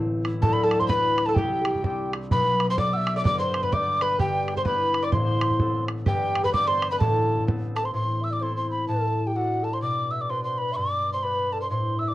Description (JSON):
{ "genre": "celtic folk, Celtic polka", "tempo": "128 BPM", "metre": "2/4", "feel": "swing 61% on 8ths", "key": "unclear", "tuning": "A4 = 440 Hz", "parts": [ { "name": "concert harp", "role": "accompaniment", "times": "0.0-12.1 s", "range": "D1 to B4", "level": "-27 LUFS", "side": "left 1 dB", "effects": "none" }, { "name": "bodhran", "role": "percussion", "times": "0.2-7.8 s", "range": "none", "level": "-26 LUFS", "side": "right 2 dB", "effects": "none" }, { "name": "mellow hollow tin whistle", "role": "melody", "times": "0.4-12.1 s", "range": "F#5 to E6", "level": "-25 LUFS", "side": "equal", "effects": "none" }, { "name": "mandolin", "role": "second line", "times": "0.4-7.4 s", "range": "G4 to D5", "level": "-31 LUFS", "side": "right 3 dB", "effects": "none" }, { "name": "mellow hollow wooden flute", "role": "second line", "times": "0.4-12.1 s", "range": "F#4 to F#5", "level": "-31 LUFS", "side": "left 3 dB", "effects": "none" } ], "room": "moderate small room reverb, RT60 0.5 s", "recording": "worn, warbling old tape, cassette tape, warbly pitch drift", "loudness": "-22 LUFS", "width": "side -16 dB against mid", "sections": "0.4-7.9 A section; 7.9-12.1 B section", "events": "none", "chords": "0.4 Dadd9; 1.4 Csus2; 2.3 Bm7; 3.2 G; 5.1 Amadd9; 6.1 G; 7.0 Amadd9; 8.9 D/A; 9.8 Bm; 10.8 G" }